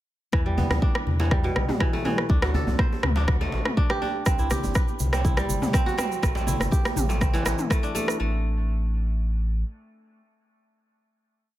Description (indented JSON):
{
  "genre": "afro house",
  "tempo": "122 BPM",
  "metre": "4/4",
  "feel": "straight",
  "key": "A dorian",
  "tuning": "A4 = 440 Hz",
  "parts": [
    { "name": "kora", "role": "arpeggios", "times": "0.3-10.2 s", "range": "B2 to C5", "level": "-29 LUFS", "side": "right 1 dB", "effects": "sidechain pumping, dub echo" },
    { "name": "warm sub bass", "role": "bass", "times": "0.3-9.6 s", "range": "G1 to E2", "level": "-26 LUFS", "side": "equal", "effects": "sidechain pumping" },
    { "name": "deep house drum kit", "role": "drums", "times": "0.3-8.2 s", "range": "rim click, toms", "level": "-29 LUFS", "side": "equal", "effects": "overdrive" },
    { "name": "electronic kick drum", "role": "drums", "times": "0.3-7.8 s", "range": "none", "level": "-23 LUFS", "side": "equal", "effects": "none" },
    { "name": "congas", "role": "percussion", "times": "0.3-7.9 s", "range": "none", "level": "-34 LUFS", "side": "left 3 dB", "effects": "none" },
    { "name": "djembe", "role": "percussion", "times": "0.6-8.1 s", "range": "none", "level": "-33 LUFS", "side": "right 3 dB", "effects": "none" },
    { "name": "tube shaker", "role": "percussion", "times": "4.3-8.2 s", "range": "none", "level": "-37 LUFS", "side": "right 7 dB", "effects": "none" }
  ],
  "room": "small room ambience",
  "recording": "none",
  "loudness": "-22 LUFS",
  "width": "side -14 dB against mid",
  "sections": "0.3-8.2 groove; 8.2-11.6 final note",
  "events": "none",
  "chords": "0.3 Em7; 2.3 D7sus4; 4.3 Cmaj7; 6.2 Am7; 8.2 N.C."
}